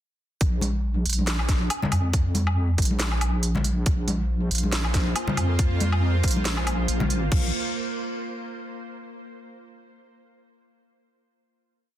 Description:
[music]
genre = deep dubstep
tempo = 139 BPM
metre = 4/4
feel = swing 55% on 16ths, half-time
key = unclear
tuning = A4 = 439 Hz
[part]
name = deep soft wobble bass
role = bass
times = 0.4-7.5 s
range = Bb1 to F2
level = -24 LUFS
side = equal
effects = chorus
[part]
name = electronic kick drum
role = drums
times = 0.4-7.4 s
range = none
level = -24 LUFS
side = equal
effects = none
[part]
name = garage drum kit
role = drums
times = 0.4-7.4 s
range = crash cymbal, hi-hat, snare drum, woodblock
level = -28 LUFS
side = equal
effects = none
[part]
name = congas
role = percussion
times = 0.6-7.1 s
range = none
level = -31 LUFS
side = left 2 dB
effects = dub echo
[part]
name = bowed-like drone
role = sustained chords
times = 4.3-7.5 s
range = Bb3 to C5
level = -32 LUFS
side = right 1 dB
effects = built-in reverb
[sound]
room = light reverb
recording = dense, heavily limited modern master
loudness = -22 LUFS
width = side -12 dB against mid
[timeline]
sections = 0.4-7.3 drop; 7.3-9.0 final chord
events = drop 0.4-7.3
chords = 0.4 Bb5

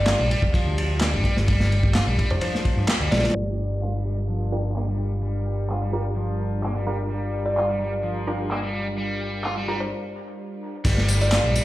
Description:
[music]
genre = breakbeat, breaks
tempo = 128 BPM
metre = 4/4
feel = straight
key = G minor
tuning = A4 = 445 Hz
[part]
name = kalimba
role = melody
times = 0.0-3.3, 7.5-11.4 s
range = C5 to D5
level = -29 LUFS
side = equal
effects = AM radio sound, dub echo
[part]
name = lush unison pad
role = sustained chords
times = 0.0-11.6 s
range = G3 to Bb4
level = -32 LUFS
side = equal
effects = chorus, sidechain pumping
[part]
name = crunchy overdriven guitar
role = riff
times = 0.0-11.6 s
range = F3 to F4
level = -30 LUFS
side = left 1 dB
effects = low-pass filter, dub echo
[part]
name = picked electric bass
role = bass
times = 0.0-11.6 s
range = F1 to G2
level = -24 LUFS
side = equal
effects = tube saturation, low-pass filter
[part]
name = crunchy breakbeat drum kit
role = drums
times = 0.1-3.4, 10.8-11.6 s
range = crash cymbal, kick drum, ride cymbal, snare drum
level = -24 LUFS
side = equal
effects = none
[part]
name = electronic handclaps and tambourine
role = drums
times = 0.1-11.6 s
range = none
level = -29 LUFS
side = equal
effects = low-pass filter on snare, low-pass filter on perc
[part]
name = orchestra-hit-like synth stab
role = stabs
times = 4.5-9.8 s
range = D4 to Bb4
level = -33 LUFS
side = right 2 dB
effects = built-in reverb, cassette tape, dub echo
[sound]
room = light reverb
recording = played on a big sound system in a bare room, stone room reverb, low-pass filter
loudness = -21 LUFS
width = side -16 dB against mid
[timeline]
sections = 0.0-3.4 A section; 3.4-10.9 B section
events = band accent 2.9; filter sweep 3.4-10.9; break 9.9-10.9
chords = 0.0 Gm7

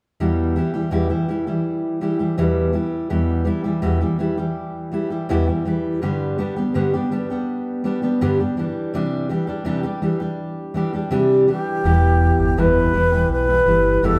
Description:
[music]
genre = pop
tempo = 82 BPM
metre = 4/4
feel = straight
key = E minor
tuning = A4 = 440 Hz
[part]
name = fingerpicked steel-string acoustic guitar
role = accompaniment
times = 0.2-14.2 s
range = E2 to G4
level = -22 LUFS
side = equal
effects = none
[part]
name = bright reedy wooden-headed alto flute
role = melody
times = 11.5-14.2 s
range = G4 to B4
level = -21 LUFS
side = equal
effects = none
[part]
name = deep dub fingered electric bass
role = bass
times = 11.8-14.2 s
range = E1 to B1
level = -23 LUFS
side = equal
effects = none
[sound]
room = wet large studio reverb, RT60 1.4 s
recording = band playing live in one room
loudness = -20 LUFS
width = mono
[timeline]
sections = 0.2-11.8 A section; 11.8-14.2 B section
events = none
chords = 0.2 Em; 6.0 G; 8.6 Cadd9; 11.8 Em

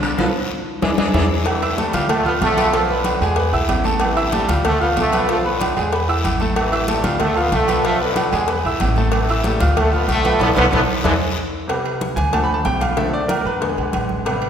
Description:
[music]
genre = latin, salsa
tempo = 188 BPM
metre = 4/4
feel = straight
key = A minor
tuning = A4 = 440 Hz
[part]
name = clear saxophone section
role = second line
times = 0.0-1.2 s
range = B2 to G#3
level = -27 LUFS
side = left 2 dB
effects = none
[part]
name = bright baby grand piano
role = accompaniment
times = 0.0-14.5 s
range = C3 to F6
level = -21 LUFS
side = equal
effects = none
[part]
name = upright bass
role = bass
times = 0.0-14.5 s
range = A1 to E2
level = -23 LUFS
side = equal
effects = none
[part]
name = congas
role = percussion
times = 0.0-14.5 s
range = none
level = -27 LUFS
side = equal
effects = none
[part]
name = guiro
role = percussion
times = 0.0-11.1 s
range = none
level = -32 LUFS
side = left 4 dB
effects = none
[part]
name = timbales and agogo bells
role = percussion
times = 0.0-14.5 s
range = none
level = -24 LUFS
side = right 4 dB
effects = none
[part]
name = bongos and cowbell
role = percussion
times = 0.2-14.4 s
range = none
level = -27 LUFS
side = left 4 dB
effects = none
[part]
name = brilliant trombone section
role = melody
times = 1.5-11.1 s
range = F2 to B3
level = -21 LUFS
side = equal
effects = none
[sound]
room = wet concert hall reverb, RT60 1.8 s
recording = recorded in a church or concert hall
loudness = -16 LUFS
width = side -8 dB against mid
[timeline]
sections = 0.0-1.5 A section; 1.5-11.7 B section; 11.7-14.5 C section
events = band accent 0.2-1.5, 10.4-11.7; drum fill 0.8-1.5; grand piano solo 11.7-14.5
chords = 0.2 B7(b5, no3); 0.8 E7; 1.5 Am7; 2.1 Dm; 2.7 Bm7b5; 3.4 E5; 4.0 Am7; 4.7 Dm; 5.3 Bm7b5; 5.9 E5; 6.6 Am7; 7.2 Dm; 7.8 Bm7b5; 8.5 E5; 9.1 Am7; 9.8 Bm7b5; 11.0 E7(no3); 11.7 Gadd11; 12.3 Dm; 13.0 Bm7b5; 13.6 E7

